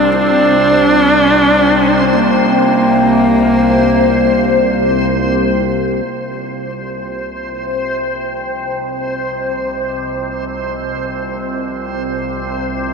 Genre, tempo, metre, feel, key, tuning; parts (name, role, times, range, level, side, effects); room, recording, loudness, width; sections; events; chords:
dark ambient drone; free time; C minor; A4 = 440 Hz
dark horsehead fiddle; melody; 0.0-5.1 s; Bb3 to D4; -13 LUFS; right 1 dB; diffuse ambient delay
dark analog pad; sustained chords; 0.2-12.9 s; C4 to Eb5; -28 LUFS; right 2 dB
overtone-sweeping drone; drone; 0.0-12.9 s; C2 to C3; -17 LUFS; left 2 dB; chorus, built-in reverb
backwards swelling texture; texture; 0.0-12.9 s; C5; -20 LUFS; equal; built-in reverb
wet huge ambient reverb, RT60 8.8 s; -12 LUFS; side -5 dB against mid
0.0-6.1 A section; 6.1-12.9 B section
fade-in on synth drone 6.1-12.9; fade-in on analog synth pad 6.1-12.9
0.0 C9sus4; 6.1 Cm